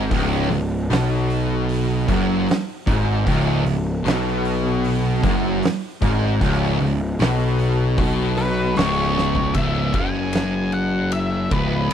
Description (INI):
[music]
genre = stoner and doom metal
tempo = 76 BPM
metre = 4/4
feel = straight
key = C# minor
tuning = A4 = 442 Hz
[part]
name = fuzz guitar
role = riff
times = 0.0-9.5 s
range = C#2 to B2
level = -25 LUFS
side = right 1 dB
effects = distortion
[part]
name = thick fuzz guitar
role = riff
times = 0.0-11.9 s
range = C#2 to B2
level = -25 LUFS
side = left 9 dB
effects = distortion
[part]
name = thick fuzz guitar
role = riff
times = 0.0-11.9 s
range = C#2 to B2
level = -25 LUFS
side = right 8 dB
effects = distortion
[part]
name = fuzz picked electric bass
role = bass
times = 0.0-11.9 s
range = C#1 to B1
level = -23 LUFS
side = equal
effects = overdrive
[part]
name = oversized low-tuned drum kit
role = drums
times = 0.1-11.9 s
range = hi-hat, kick drum, ride cymbal, snare drum, toms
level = -25 LUFS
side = equal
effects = none
[part]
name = octave-fuzz lead guitar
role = melody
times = 8.4-11.9 s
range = B4 to G#5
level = -25 LUFS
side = left 2 dB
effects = distortion, slapback echo
[sound]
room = little or no reverb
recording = dry, close 1970s-style studio recording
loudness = -18 LUFS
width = side -9 dB against mid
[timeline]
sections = 0.0-9.5 A section; 9.5-11.9 B section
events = drum fill 9.2-9.5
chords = 0.0 C#5; 9.5 C#m